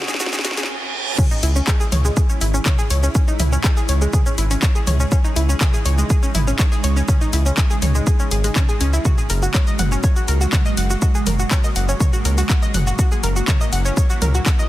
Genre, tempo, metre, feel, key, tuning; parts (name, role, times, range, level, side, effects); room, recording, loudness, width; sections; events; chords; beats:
melodic techno; 122 BPM; 4/4; straight; C# minor; A4 = 439 Hz
evolving wavetable pad; sustained chords; 1.2-14.7 s; C#3 to G#4; -28 LUFS; right 2 dB; ensemble chorus, built-in reverb, phaser, sidechain pumping
analog pluck; arpeggios; 0.0-14.6 s; G#3 to F#6; -26 LUFS; equal; chorus, sidechain pumping, tape echo
round analog bass; bass; 0.0-14.4 s; F#1 to C#2; -18 LUFS; equal; sidechain pumping, high-pass filter
overtone-sweeping drone; drone; 0.2-0.7 s; C#3 to G#3; -43 LUFS; right 1 dB
house drum kit; drums; 0.0-14.7 s; crash cymbal, handclaps, hi-hat, shaker, snare drum, toms; -24 LUFS; equal; overdrive, studio reverb, sidechain pumping on toms, sidechain pumping on perc, sidechain pumping on hats, sidechain pumping on cymbals
riser and reverse cymbal; sound effects; 0.0-1.2 s; -28 LUFS; right 4 dB
electronic kick drum; drums; 1.2-14.6 s; -17 LUFS; equal; overdrive, studio reverb
digital ambience; dense, heavily limited modern master, high-pass filter, faint mains hum; -16 LUFS; side -15 dB against mid
0.0-1.2 A section; 1.2-14.7 B section
build-up 0.0-1.2; drum fill 0.0-0.7; reverse cymbal 0.2-1.2; drop 1.2-14.7
0.0 F#add9; 1.2 C#m; 9.1 F#add9
0.20 0.69 | 1.18 1.68 2.17 2.66 | 3.15 3.64 4.13 4.63 | 5.12 5.61 6.10 6.59 | 7.08 7.58 8.07 8.56 | 9.05 9.54 10.04 10.53 | 11.02 11.51 12.00 12.49 | 12.99 13.48 13.97 14.46